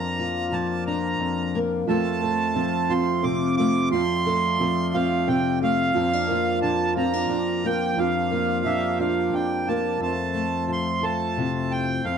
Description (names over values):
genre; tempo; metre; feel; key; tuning
acoustic folk duo or small band; 59 BPM (dotted quarters); 6/8; straight; F major; A4 = 441 Hz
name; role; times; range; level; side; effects
accordion; melody; 0.0-12.2 s; E5 to D6; -26 LUFS; right 4 dB; slapback echo
fingerpicked steel-string acoustic guitar; accompaniment; 0.0-12.2 s; F2 to A4; -25 LUFS; left 4 dB; none
hand-pumped harmonium; sustained chords; 0.0-12.2 s; F3 to D5; -34 LUFS; equal; none
clear upright piano; arpeggios; 1.9-10.1 s; F3 to F4; -26 LUFS; right 9 dB; none
room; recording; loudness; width
moderate studio reverb, RT60 0.5 s; dark, warm production; -21 LUFS; side -7 dB against mid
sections
0.0-10.0 A section; 10.0-12.2 B section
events
none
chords
0.0 Bb/F; 1.9 F; 5.9 Bb/F; 10.0 Fmaj7